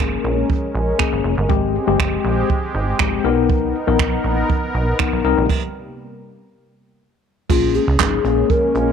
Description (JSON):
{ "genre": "dance-pop", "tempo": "120 BPM", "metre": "4/4", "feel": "straight", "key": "Bb dorian", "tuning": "A4 = 440 Hz", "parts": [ { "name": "mellow tine electric piano", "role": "accompaniment", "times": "0.0-8.9 s", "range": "Ab3 to A#4", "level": "-20 LUFS", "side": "left 14 dB", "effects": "overdrive, fast stereo tremolo, sidechain pumping" }, { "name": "sweeping resonant pad", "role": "sustained chords", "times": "0.0-8.9 s", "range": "C3 to A#4", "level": "-24 LUFS", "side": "right 1 dB", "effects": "chorus, sidechain pumping" }, { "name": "plucky analog bass", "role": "bass", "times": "0.0-8.9 s", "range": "F1 to Db2", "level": "-21 LUFS", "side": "right 1 dB", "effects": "sidechain pumping" }, { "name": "jazz brush drum kit", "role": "drums", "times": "0.5-8.9 s", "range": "crash cymbal, finger snaps, handclaps, hi-hat, kick drum, snare drum", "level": "-20 LUFS", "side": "right 4 dB", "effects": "none" }, { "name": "hollow clarinet-like synth lead", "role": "melody", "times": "7.5-8.9 s", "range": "F4 to Bb4", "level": "-19 LUFS", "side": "left 2 dB", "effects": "chorus" } ], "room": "moderate spring reverb, RT60 1.7 s, studio reverb", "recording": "1960s-style stereo", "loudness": "-16 LUFS", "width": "side -7 dB against mid", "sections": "0.0-7.5 A section; 7.5-8.9 B section", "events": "stop 5.5-7.5", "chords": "0.0 Bbm7; 1.5 Abmaj7; 3.2 Bmaj7; 5.2 Cm7; 6.5 N.C.; 7.5 Bbm7", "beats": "0.00 0.50 1.00 | 1.50 2.00 2.50 3.00 | 3.50 4.00 4.50 5.00 | 5.50 6.00 6.50 7.00 | 7.50 8.00 8.50" }